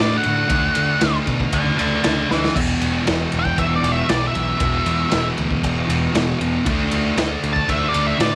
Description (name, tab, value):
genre	garage rock duo or trio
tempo	117 BPM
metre	4/4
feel	straight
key	unclear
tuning	A4 = 440 Hz
part	octave-fuzz lead guitar	melody	0.0-8.4 s	B4 to A5	-24 LUFS	equal	distortion
part	thick fuzz guitar	riff	0.0-8.4 s	E2 to D4	-24 LUFS	equal	distortion
part	growling picked electric bass	bass	0.0-8.4 s	E1 to D3	-27 LUFS	equal	overdrive
part	raw garage drum kit	drums	0.2-8.3 s	crash cymbal, kick drum, ride cymbal, snare drum	-25 LUFS	equal	none
room	studio ambience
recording	none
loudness	-19 LUFS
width	mono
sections	0.0-8.4 A section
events	drum fill 2.3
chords	0.0 D; 2.6 E5; 6.7 D5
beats	| 0.50 1.02 1.53 2.04 | 2.55 3.07 3.58 4.09 | 4.61 5.12 5.63 6.15 | 6.66 7.18 7.69 8.20